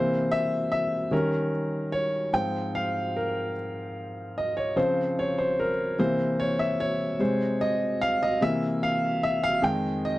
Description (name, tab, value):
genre	gospel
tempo	49 BPM (dotted quarters)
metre	6/8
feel	straight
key	unclear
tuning	A4 = 439 Hz
part	clear baby grand piano	solo	0.0-10.2 s	F2 to G5	-24 LUFS	equal	none
room	light reverb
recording	dry, close 1970s-style studio recording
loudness	-24 LUFS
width	side -17 dB against mid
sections	0.0-10.2 A section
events	grand piano solo 0.0-10.2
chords	0.0 C7; 1.1 Eb7; 2.3 Ab6; 4.8 Dbmaj7; 6.0 C7; 7.2 Dbmaj9/C; 8.4 C7; 9.6 Fm9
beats	1.12 | 2.34 3.56 | 4.77 5.99 | 7.20 8.42 | 9.63